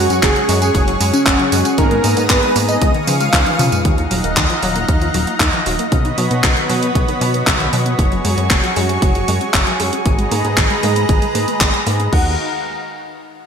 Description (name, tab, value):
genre	italo disco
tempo	116 BPM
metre	4/4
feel	straight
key	Eb minor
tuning	A4 = 440 Hz
part	wide unison lead	melody	0.0-3.7, 12.1-12.3 s	Db4 to Gb5	-19 LUFS	equal	ping-pong delay
part	lush unison pad	sustained chords	0.0-12.4 s	Eb3 to Eb6	-20 LUFS	right 1 dB	chorus
part	analog pluck	arpeggios	0.0-12.4 s	Db3 to Db4	-23 LUFS	left 2 dB	chorus, ping-pong delay
part	analog synth brass	stabs	0.0-3.8 s	Cb4 to Bb5	-24 LUFS	right 4 dB	chorus
part	chorused synth bass	bass	0.0-12.4 s	Eb1 to Db3	-20 LUFS	equal	none
part	house drum kit	drums	0.1-12.2 s	crash cymbal, handclaps, hi-hat, tambourine, toms	-19 LUFS	equal	gated reverb
part	electronic kick drum	drums	0.2-12.2 s	none	-17 LUFS	equal	none
room	moderate lush hall reverb, RT60 1.7 s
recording	bright 1980s-style digital production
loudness	-13 LUFS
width	side -7 dB against mid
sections	0.0-3.9 A section; 3.9-12.1 B section; 12.1-13.5 C section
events	drum fill 3.3-3.9; filter sweep on synth arpeggio sound 3.9-12.1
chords	0.0 Gbsus2; 1.8 Abmadd9; 2.8 Dbadd9; 3.9 Ebmadd9; 5.9 Badd9; 8.0 Gbsus2; 10.1 Abmadd9; 12.1 Ebmadd9